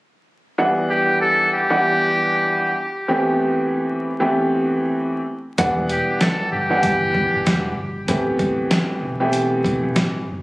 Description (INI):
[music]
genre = hip hop, boom-bap hip-hop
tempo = 96 BPM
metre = 4/4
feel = swing 59% on 16ths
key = E minor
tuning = A4 = 440 Hz
[part]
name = clear upright piano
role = accompaniment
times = 0.6-10.2 s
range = E3 to F#5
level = -20 LUFS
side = equal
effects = high-pass filter, low-pass filter
[part]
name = trumpet with metal mute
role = melody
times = 0.9-8.0 s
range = G4 to A4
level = -20 LUFS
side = equal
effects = high-pass filter, low-pass filter, ping-pong delay
[part]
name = hollow-body short-scale fingered electric bass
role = bass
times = 5.6-10.4 s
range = E1 to B1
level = -28 LUFS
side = equal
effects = none
[part]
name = dusty soul sampler-style drum kit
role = drums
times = 5.6-10.1 s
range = hi-hat, kick drum, snare drum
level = -22 LUFS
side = equal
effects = none
[sound]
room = light reverb, digital ambience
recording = recorded on a phone in the room, club reverb, vinyl crackle, compression, lossy compression artefacts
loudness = -17 LUFS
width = side -20 dB against mid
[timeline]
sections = 0.6-10.4 A section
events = none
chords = 0.6 Em9; 3.1 Am9; 5.6 Em9; 8.1 Am9